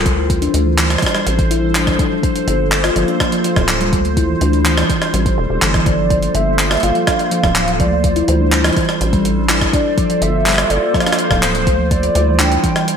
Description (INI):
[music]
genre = IDM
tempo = 124 BPM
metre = 4/4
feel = straight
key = G dorian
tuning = A4 = 440 Hz
[part]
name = warbly tape-like pad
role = sustained chords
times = 0.0-13.0 s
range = G3 to C5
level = -21 LUFS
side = equal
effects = chorus, built-in reverb
[part]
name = deep acid bass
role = bass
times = 0.0-12.6 s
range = D1 to D2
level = -18 LUFS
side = equal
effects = none
[part]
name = jungle sampler-style drum kit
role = drums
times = 0.0-13.0 s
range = handclaps, hi-hat, rim click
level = -18 LUFS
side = equal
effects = gated reverb, digital delay
[part]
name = bubbling stepped-filter texture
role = texture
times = 0.1-13.0 s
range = C5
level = -28 LUFS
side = equal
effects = chorus, built-in reverb
[part]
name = electronic kick drum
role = drums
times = 0.1-12.7 s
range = none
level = -19 LUFS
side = equal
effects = none
[part]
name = harp-like synth pluck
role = arpeggios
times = 0.2-12.8 s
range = E3 to F4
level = -20 LUFS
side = left 2 dB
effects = chorus, digital delay
[part]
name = warbly nostalgic lead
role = melody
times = 5.9-13.0 s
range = C5 to G5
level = -19 LUFS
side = right 1 dB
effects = analog chorus, cassette tape, ping-pong delay
[sound]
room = moderate plate reverb, RT60 1.8 s, digital ambience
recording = bright 1980s-style digital production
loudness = -13 LUFS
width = side -7 dB against mid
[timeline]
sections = 0.0-13.0 A section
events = none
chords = 0.1 Dm11; 1.0 Am7; 2.0 Gm11; 3.9 Dm11; 4.9 Am7; 5.9 Gm11; 7.8 Dm11; 8.8 Am7; 9.7 Gm11; 11.7 Dm11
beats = | 0.06 0.54 1.02 1.51 | 1.99 2.48 2.96 3.44 | 3.93 4.41 4.90 5.38 | 5.86 6.35 6.83 7.32 | 7.80 8.28 8.77 9.25 | 9.73 10.22 10.70 11.19 | 11.67 12.15 12.64